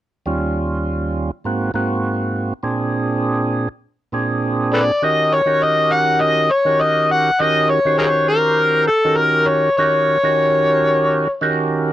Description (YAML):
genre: blues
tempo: 101 BPM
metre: 4/4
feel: straight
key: unclear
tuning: A4 = 440 Hz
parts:
  - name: percussive tonewheel organ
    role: accompaniment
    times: 0.3-11.9 s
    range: Eb2 to C5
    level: -18 LUFS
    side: right 2 dB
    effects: slow rotary speaker
  - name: overdriven harmonica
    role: melody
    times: 4.7-11.5 s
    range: Ab4 to F#5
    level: -15 LUFS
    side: left 2 dB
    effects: none
room: little or no reverb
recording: dry, close 1970s-style studio recording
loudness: -15 LUFS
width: side -12 dB against mid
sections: 0.3-5.0 A section; 5.0-11.9 B section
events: none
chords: 0.3 Eb7; 1.4 Ab7; 2.6 Bb7; 5.0 Eb7#9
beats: | 0.26 0.85 1.45 2.04 | 2.64 3.23 3.83 4.42 | 5.02 5.62 6.21 6.81 | 7.40 8.00 8.59 9.19 | 9.78 10.38 10.97 11.57